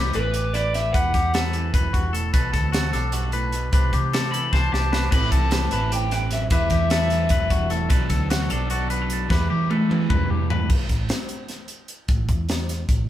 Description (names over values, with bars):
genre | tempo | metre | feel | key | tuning
math rock and midwest emo | 301 BPM (eighths) | 7/8 | straight | E minor | A4 = 441 Hz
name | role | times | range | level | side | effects
twangy electric guitar | accompaniment | 0.0-10.7 s | E2 to B4 | -30 LUFS | right 5 dB | none
twangy electric guitar | arpeggios | 0.0-10.7 s | F#4 to C5 | -29 LUFS | left 4 dB | spring reverb
hollow-body short-scale fingered electric bass | bass | 0.0-13.1 s | E1 to E3 | -24 LUFS | equal | none
crisp fusion drum kit | drums | 0.1-13.0 s | crash cymbal, hi-hat, kick drum, snare drum, toms | -23 LUFS | equal | none
raw garage guitar | melody | 0.2-1.4, 4.3-7.7 s | B4 to B5 | -25 LUFS | left 1 dB | overdrive
overdriven semi-hollow guitar | riff | 5.1-10.7 s | A2 to E4 | -30 LUFS | equal | none
room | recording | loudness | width
light reverb | band playing live in one room | -19 LUFS | side -12 dB against mid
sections
0.0-10.7 A section; 10.7-13.1 B section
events
drum fill 4.5-5.1, 9.3-10.7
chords
0.0 Am9; 0.9 Emadd9; 2.3 Bm7; 3.7 C69; 5.1 Am9; 6.5 Emadd9; 7.9 Bm7; 9.3 Emadd9; 10.7 Asus2; 12.1 A5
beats
0.14 0.34 0.54 0.74 | 0.94 1.14 1.34 1.54 1.74 1.94 2.14 | 2.34 2.54 2.73 2.93 3.13 3.33 3.53 | 3.73 3.93 4.13 4.33 4.53 4.72 4.92 | 5.12 5.32 5.52 5.72 5.92 6.12 6.32 | 6.51 6.71 6.91 7.11 7.31 7.51 7.71 | 7.91 8.10 8.30 8.50 8.70 8.90 9.10 | 9.30 9.50 9.70 9.90 10.10 10.29 10.49 | 10.69 10.89 11.09 11.29 11.49 11.69 11.89 | 12.09 12.29 12.49 12.69 12.89